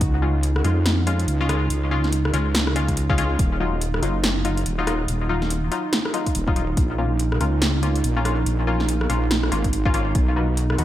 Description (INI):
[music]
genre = deep dubstep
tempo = 142 BPM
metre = 4/4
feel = swing 60% on 16ths, half-time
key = Eb minor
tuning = A4 = 440 Hz
[part]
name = dark analog pad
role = sustained chords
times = 0.0-10.8 s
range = Eb4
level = -28 LUFS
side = right 6 dB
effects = chorus
[part]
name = wobble bass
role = bass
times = 0.0-10.8 s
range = Eb1 to F2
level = -22 LUFS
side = equal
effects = chorus, tube saturation
[part]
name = deep house drum kit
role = drums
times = 0.0-10.8 s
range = hi-hat, rim click, snare drum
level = -26 LUFS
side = equal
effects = overdrive
[part]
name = electronic kick drum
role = drums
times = 0.0-0.1, 2.9-3.5, 6.3-6.9, 9.6-10.3 s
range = none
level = -22 LUFS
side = equal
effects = overdrive
[part]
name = filtered dub chord stab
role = stabs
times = 0.2-10.8 s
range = Gb3 to F#4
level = -27 LUFS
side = left 4 dB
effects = chorus, dub echo
[sound]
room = light reverb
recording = none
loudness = -19 LUFS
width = side -13 dB against mid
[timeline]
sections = 0.0-10.8 A section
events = none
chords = 0.0 Db; 3.4 Ebmadd9; 6.8 Bbm; 10.2 B